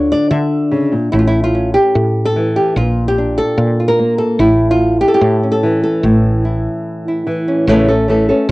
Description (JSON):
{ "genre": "flamenco", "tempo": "146 BPM", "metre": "4/4", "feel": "straight", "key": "A phrygian dominant", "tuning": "A4 = 440 Hz", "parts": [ { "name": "flamenco guitar", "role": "melody", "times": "0.0-8.5 s", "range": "A2 to E5", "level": "-12 LUFS", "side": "equal", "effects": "cassette tape" }, { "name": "woody fretless electric bass", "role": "bass", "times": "0.0-8.5 s", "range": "A1 to D3", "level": "-17 LUFS", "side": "equal", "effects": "none" } ], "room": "moderate booth ambience, RT60 0.2 s", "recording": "home recording on cassette", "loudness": "-12 LUFS", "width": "side -20 dB against mid", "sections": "0.0-7.7 A section", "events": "break 6.9-7.7", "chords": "0.0 Dm; 1.1 A; 2.8 Bb; 4.4 A" }